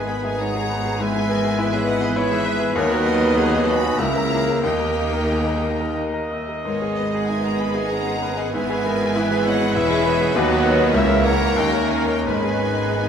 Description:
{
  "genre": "classical",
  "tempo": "82-106 BPM",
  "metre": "3/4",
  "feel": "rubato",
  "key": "G# minor",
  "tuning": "A4 = 440 Hz",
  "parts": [
    { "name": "clear baby grand piano", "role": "melody", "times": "0.0-13.1 s", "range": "C#2 to B4", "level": "-24 LUFS", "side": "left 2 dB", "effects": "none" },
    { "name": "rich studio violin section", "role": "melody", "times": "0.0-13.1 s", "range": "B4 to B5", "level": "-29 LUFS", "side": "left 3 dB", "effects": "none" },
    { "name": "clear clarinet", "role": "second line", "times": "0.0-13.1 s", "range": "F#4 to E5", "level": "-29 LUFS", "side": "left 1 dB", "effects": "none" },
    { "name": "mellow hollow concert flute", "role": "second line", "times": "0.0-13.1 s", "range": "F#4 to G#5", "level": "-30 LUFS", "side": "left 2 dB", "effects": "none" },
    { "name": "rich studio violin section", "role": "second line", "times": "0.0-13.1 s", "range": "B3 to A#4", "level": "-33 LUFS", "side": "left 3 dB", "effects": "none" },
    { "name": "warm cor anglais", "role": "second line", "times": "0.0-13.1 s", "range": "G#4 to G#5", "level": "-33 LUFS", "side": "right 2 dB", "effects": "none" },
    { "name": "dark bassoon", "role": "accompaniment", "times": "0.0-13.1 s", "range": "G#3 to B3", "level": "-31 LUFS", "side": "right 1 dB", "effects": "none" },
    { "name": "rich studio viola section", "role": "accompaniment", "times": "0.0-13.1 s", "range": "D#3 to C#4", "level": "-29 LUFS", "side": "right 3 dB", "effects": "none" },
    { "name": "dark trombone section", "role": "sustained chords", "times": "0.0-13.1 s", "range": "C#3 to A#3", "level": "-30 LUFS", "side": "right 4 dB", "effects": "none" },
    { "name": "mellow French horn section", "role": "sustained chords", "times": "0.0-13.1 s", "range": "A#3 to G#4", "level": "-30 LUFS", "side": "left 3 dB", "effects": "none" },
    { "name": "warm trumpet section", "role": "stabs", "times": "0.0-13.1 s", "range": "G#4 to D#5", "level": "-29 LUFS", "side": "right 2 dB", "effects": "none" },
    { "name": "rich studio cello section", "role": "bass", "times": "0.0-13.1 s", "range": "C#2 to G#2", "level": "-28 LUFS", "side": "right 2 dB", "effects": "none" },
    { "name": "rich studio double bass section", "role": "bass", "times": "0.0-13.1 s", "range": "E1 to D#2", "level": "-29 LUFS", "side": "right 2 dB", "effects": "none" }
  ],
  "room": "wet scoring stage reverb, RT60 1.7 s",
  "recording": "none",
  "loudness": "-18 LUFS",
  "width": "side -7 dB against mid",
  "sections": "0.0-13.1 A section",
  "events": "none",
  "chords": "0.0 G#m; 1.0 E/G#; 2.8 B/D#; 4.0 A#dim/C#; 4.6 D#; 6.7 G#m; 8.5 E/G#; 10.4 B/D#; 11.0 A#dim/C#; 11.6 D#5; 12.3 G#m"
}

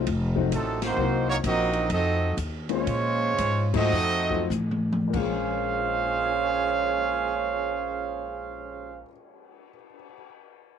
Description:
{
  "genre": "jazz, big band swing",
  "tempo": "92-132 BPM",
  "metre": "4/4",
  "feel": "swing 65% on 8ths",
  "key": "Bb minor",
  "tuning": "A4 = 440 Hz",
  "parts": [
    { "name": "warm upright piano", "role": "accompaniment", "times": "0.0-10.3 s", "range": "Bb2 to C7", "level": "-31 LUFS", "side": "left 16 dB", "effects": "none" },
    { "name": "upright bass", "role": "bass", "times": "0.0-9.0 s", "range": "F1 to Bb2", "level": "-29 LUFS", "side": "left 1 dB", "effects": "none" },
    { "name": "open jazz drum kit", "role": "drums", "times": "0.1-10.2 s", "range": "crash cymbal, cymbal swell, hi-hat, kick drum, ride cymbal, snare drum, toms", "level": "-35 LUFS", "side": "left 1 dB", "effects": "none" },
    { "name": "clear trumpet section", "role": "melody", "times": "0.5-9.0 s", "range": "Gb3 to F5", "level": "-26 LUFS", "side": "right 3 dB", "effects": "none" },
    { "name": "dark trombone section", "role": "second line", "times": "0.5-9.0 s", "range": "Bb2 to Eb4", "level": "-34 LUFS", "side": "right 11 dB", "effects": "tape echo" }
  ],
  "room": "light reverb, small room reverb",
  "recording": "1960s-style stereo with parts hard left and right",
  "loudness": "-23 LUFS",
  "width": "side -8 dB against mid",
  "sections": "0.0-5.1 A section; 5.1-10.3 B section",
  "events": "band accent 0.7, 3.6; slowing down 1.0-5.1; drum fill 4.5-5.1",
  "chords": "0.1 F7b9; 1.0 Cm7b5; 1.9 F7b9; 2.9 Bbm9; 3.9 F7b9; 5.1 Bbm9"
}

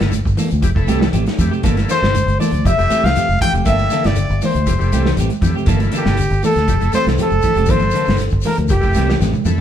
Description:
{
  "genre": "afrobeat",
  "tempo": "119 BPM",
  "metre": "4/4",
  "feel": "straight",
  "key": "G dorian",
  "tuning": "A4 = 440 Hz",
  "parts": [
    { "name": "overdriven combo organ", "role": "accompaniment", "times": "0.0-9.6 s", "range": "A3 to A4", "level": "-27 LUFS", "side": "left 1 dB", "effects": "none" },
    { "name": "clean electric guitar", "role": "arpeggios", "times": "0.0-9.6 s", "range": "C3 to G3", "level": "-24 LUFS", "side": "left 6 dB", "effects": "none" },
    { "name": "clean electric guitar", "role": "stabs", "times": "0.0-9.5 s", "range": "E3 to A4", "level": "-24 LUFS", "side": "right 4 dB", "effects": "none" },
    { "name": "fingered electric bass", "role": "bass", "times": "0.0-9.6 s", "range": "E1 to F2", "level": "-18 LUFS", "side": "equal", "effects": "none" },
    { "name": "warm soul drum kit", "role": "drums", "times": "0.0-9.6 s", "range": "hi-hat, kick drum, snare drum, toms", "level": "-20 LUFS", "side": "equal", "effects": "none" },
    { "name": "shekere", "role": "percussion", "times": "0.0-9.6 s", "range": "none", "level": "-29 LUFS", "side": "left 4 dB", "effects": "none" },
    { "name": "congas", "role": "percussion", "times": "0.1-9.6 s", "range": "none", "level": "-26 LUFS", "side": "right 3 dB", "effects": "none" },
    { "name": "warm trumpet", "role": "melody", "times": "1.9-9.2 s", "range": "G4 to G5", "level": "-19 LUFS", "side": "left 1 dB", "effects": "none" },
    { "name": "kalimba", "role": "second line", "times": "1.9-9.2 s", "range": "G4 to G5", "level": "-24 LUFS", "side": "left 1 dB", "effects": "none" }
  ],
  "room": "moderate stone room reverb, RT60 1.0 s",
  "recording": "band playing live in one room",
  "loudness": "-13 LUFS",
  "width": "side -10 dB against mid",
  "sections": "0.0-9.6 A section",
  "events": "drum fill 9.2-9.6",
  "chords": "0.0 Gm69; 0.6 Fmaj9; 1.6 Gm69; 2.6 Fmaj9; 3.7 Gm69; 4.7 Fmaj9; 5.7 Gm69; 6.7 Fmaj9; 7.7 Gm69; 8.7 Fmaj9"
}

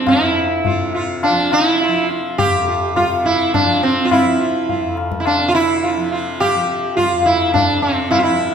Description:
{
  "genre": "indian classical, Hindustani",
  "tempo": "104 BPM",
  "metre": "7/4",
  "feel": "straight",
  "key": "F raga yaman",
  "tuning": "A4 = 441 Hz",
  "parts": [
    { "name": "sitar", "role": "melody", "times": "0.0-8.5 s", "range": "C4 to G4", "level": "-15 LUFS", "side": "right 2 dB", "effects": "none" },
    { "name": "tanpura", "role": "drone", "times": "0.0-8.5 s", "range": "F2 to F3", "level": "-26 LUFS", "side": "equal", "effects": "none" },
    { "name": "tabla", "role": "percussion", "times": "0.1-8.3 s", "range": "none", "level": "-20 LUFS", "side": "left 4 dB", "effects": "none" }
  ],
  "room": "wet recital hall reverb, RT60 1.6 s",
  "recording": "recorded in a church or concert hall",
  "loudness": "-14 LUFS",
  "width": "side -7 dB against mid",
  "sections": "0.0-8.5 A section",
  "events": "none",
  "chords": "none"
}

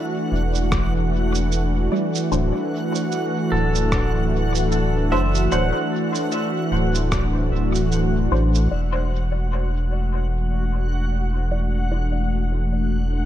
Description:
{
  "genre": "ambient dub",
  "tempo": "75 BPM",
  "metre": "4/4",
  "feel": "swing 58% on 16ths",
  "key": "unclear",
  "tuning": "A4 = 439 Hz",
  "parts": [
    { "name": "warm analog pad", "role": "sustained chords", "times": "0.0-13.3 s", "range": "E3 to F#4", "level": "-24 LUFS", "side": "equal", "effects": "chorus" },
    { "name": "pedal steel guitar", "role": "arpeggios", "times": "0.0-9.0 s", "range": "A4 to F#5", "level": "-30 LUFS", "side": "equal", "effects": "tape echo" },
    { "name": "backwards swelling texture", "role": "texture", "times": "0.0-13.3 s", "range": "F#4 to F#5", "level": "-32 LUFS", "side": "equal", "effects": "built-in reverb" },
    { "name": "warm sub bass", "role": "bass", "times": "0.3-13.3 s", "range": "D1 to A1", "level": "-21 LUFS", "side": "equal", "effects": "none" },
    { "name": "electronic cabasa and rim click", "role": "drums", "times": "0.6-8.7 s", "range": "none", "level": "-31 LUFS", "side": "right 2 dB", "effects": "dub echo" },
    { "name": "electronic kick drum", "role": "drums", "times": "0.7-7.3 s", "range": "none", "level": "-25 LUFS", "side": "equal", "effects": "none" },
    { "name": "filtered dub chord stab", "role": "stabs", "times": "1.9-12.2 s", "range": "F#3 to D5", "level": "-30 LUFS", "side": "left 1 dB", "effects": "phaser, dub echo" }
  ],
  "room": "light reverb, digital ambience",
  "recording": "none",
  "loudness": "-19 LUFS",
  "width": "side -12 dB against mid",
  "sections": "0.0-8.7 A section; 8.7-13.3 B section",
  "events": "filter sweep on synth stab 0.0-8.7",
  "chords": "0.0 E7(no3); 2.3 D7; 8.7 Em7"
}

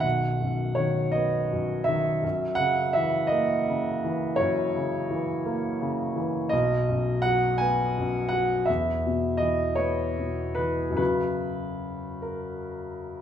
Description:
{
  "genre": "classical, romantic nocturne for solo piano",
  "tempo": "47-58 BPM (dotted quarters)",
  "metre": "12/8",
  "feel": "rubato",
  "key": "B major",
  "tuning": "A4 = 436 Hz",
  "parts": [
    { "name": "clear concert grand piano", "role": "solo", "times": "0.0-13.2 s", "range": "B1 to G#5", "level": "-24 LUFS", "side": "equal", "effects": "none" }
  ],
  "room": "wet recital hall reverb, RT60 1.4 s",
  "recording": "recorded in a church or concert hall",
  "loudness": "-24 LUFS",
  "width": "side -9 dB against mid",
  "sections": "0.0-13.2 A section",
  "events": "none",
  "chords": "0.0 B; 2.2 F#7; 6.5 B; 8.7 E5; 11.0 F#"
}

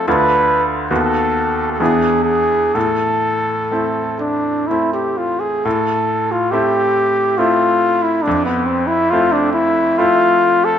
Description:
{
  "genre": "classical, romantic duo for trumpet and grand piano",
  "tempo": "61-73 BPM",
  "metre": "3/4",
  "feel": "rubato",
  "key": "A minor",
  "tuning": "A4 = 441 Hz",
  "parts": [
    { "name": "dark trumpet", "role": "melody", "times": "0.0-10.8 s", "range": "B3 to B4", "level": "-15 LUFS", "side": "equal", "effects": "none" },
    { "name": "bright grand piano", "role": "accompaniment", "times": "0.0-10.8 s", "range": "D2 to F#4", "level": "-19 LUFS", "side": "equal", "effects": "none" }
  ],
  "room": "moderate recital hall reverb, RT60 1.6 s",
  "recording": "none",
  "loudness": "-14 LUFS",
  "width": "side -9 dB against mid",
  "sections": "0.0-5.7 A section; 5.7-10.8 A section",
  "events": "none",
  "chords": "0.1 Dm; 0.9 B7/D#; 1.8 E7; 2.7 Am; 8.3 Fmaj7"
}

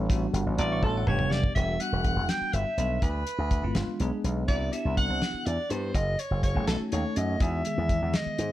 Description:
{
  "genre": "electric jazz fusion",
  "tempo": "82 BPM (dotted quarters)",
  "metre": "6/8",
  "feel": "straight",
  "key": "E minor",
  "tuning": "A4 = 440 Hz",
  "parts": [
    { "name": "bell-like tine electric piano", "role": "accompaniment", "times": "0.0-8.5 s", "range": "D#3 to C#6", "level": "-33 LUFS", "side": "left 1 dB", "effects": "fast stereo tremolo" },
    { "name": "slap bass with an envelope filter", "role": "bass", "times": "0.0-8.5 s", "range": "E1 to G#2", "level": "-28 LUFS", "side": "equal", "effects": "none" },
    { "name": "damped 70s drum kit", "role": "drums", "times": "0.1-8.5 s", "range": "hi-hat, kick drum, snare drum, toms", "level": "-29 LUFS", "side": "equal", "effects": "none" },
    { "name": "warm soprano saxophone", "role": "melody", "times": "0.6-8.5 s", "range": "A4 to G5", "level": "-31 LUFS", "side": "equal", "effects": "none" }
  ],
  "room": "light reverb",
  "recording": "tape saturation",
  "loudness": "-25 LUFS",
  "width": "side -14 dB against mid",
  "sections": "0.0-1.6 A section; 1.6-8.5 B section",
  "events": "drum fill 0.8-1.6",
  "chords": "0.0 A13sus4; 1.6 Em9; 3.0 Dm7; 3.8 G7b9; 4.5 Cmaj9#11; 6.0 F#m9; 6.7 B9; 7.4 Emaj7"
}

